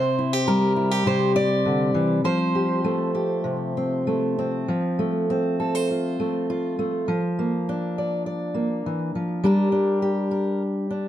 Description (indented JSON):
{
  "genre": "folk, solo fingerstyle acoustic guitar",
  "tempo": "101 BPM",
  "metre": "4/4",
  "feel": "rubato",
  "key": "F major",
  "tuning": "A4 = 440 Hz",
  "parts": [
    { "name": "fingerpicked steel-string acoustic guitar", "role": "solo", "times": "0.0-11.1 s", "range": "C3 to D5", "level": "-21 LUFS", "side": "equal", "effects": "slapback echo" }
  ],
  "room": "light reverb",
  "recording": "close, detailed microphones",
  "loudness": "-21 LUFS",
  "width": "side -12 dB against mid",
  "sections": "0.0-4.7 A section; 4.7-11.1 B section",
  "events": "none",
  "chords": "0.0 Cadd9; 2.3 Fadd9; 4.7 F; 7.1 Bb/F; 9.4 Gm",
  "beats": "0.48 1.07 1.66 | 2.26 2.86 3.46 4.08 | 4.70 5.30 5.90 6.49 | 7.09 7.69 8.28 8.86 | 9.45 10.03 10.62"
}